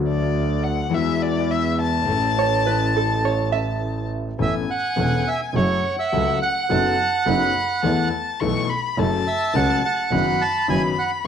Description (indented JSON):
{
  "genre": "tango",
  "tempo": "105 BPM",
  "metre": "4/4",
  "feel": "rubato",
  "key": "A major",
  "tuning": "A4 = 438 Hz",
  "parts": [
    { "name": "warm concert grand piano", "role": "accompaniment", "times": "0.0-11.3 s", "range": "E1 to A4", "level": "-24 LUFS", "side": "left 6 dB", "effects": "cassette tape, plate reverb" },
    { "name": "clear double bass", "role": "bass", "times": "0.0-11.3 s", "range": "E1 to E2", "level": "-25 LUFS", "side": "right 4 dB", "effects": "none" },
    { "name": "warm violin", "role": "second line", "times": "0.1-11.3 s", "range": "D5 to C#6", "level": "-25 LUFS", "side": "left 6 dB", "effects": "cassette tape, plate reverb" },
    { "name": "vintage hollow-body jazz guitar", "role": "second line", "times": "2.4-4.4 s", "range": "A4 to E5", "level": "-24 LUFS", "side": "right 10 dB", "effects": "cassette tape, plate reverb" },
    { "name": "bandoneon", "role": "melody", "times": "4.4-11.1 s", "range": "C#5 to A5", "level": "-22 LUFS", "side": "right 6 dB", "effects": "cassette tape, plate reverb" }
  ],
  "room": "moderate studio reverb, RT60 0.5 s",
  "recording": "home recording on cassette",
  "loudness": "-19 LUFS",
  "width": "side -8 dB against mid",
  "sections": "0.0-4.4 A section; 4.4-11.3 B section",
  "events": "violin solo 0.0-4.4",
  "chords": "0.0 D; 0.9 Eadd9; 2.1 A; 4.4 Aadd9; 5.5 F#m; 6.7 B7/F#; 7.8 Esus4; 9.0 F#m; 10.1 B/F#",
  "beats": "0.35 0.93 1.50 | 2.08 2.65 3.23 3.81 | 4.40 4.97 5.55 6.13 | 6.70 7.27 7.84 8.41 | 8.98 9.54 10.12 10.68 | 11.25"
}